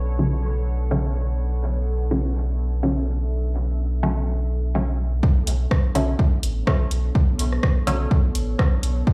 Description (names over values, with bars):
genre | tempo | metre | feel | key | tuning
dub techno | 125 BPM | 4/4 | swing 55% on 16ths | B minor | A4 = 436 Hz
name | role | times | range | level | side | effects
deep dark ambient pad | sustained chords | 0.0-9.1 s | B3 to E5 | -36 LUFS | equal | chorus, built-in reverb, sidechain pumping
soft dub sub bass | bass | 0.0-9.0 s | A1 to B1 | -25 LUFS | equal | sidechain pumping
filtered dub chord stab | stabs | 0.2-8.0 s | D3 to C#4 | -28 LUFS | equal | chorus, phaser, sidechain pumping, dub echo
electronic kick drum | drums | 5.2-9.1 s | none | -22 LUFS | equal | none
deep house drum kit | drums | 5.5-8.9 s | hi-hat, rim click | -32 LUFS | equal | none
room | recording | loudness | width
light reverb | played on a big sound system in a bare room, large studio reverb | -22 LUFS | mono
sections
0.0-5.2 A section; 5.2-9.1 B section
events
filter sweep on synth stab 0.0-5.2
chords
0.0 Bm9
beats
0.43 0.91 | 1.39 1.87 2.35 2.83 | 3.31 3.79 4.27 4.75 | 5.23 5.71 6.19 6.67 | 7.15 7.63 8.11 8.59 | 9.07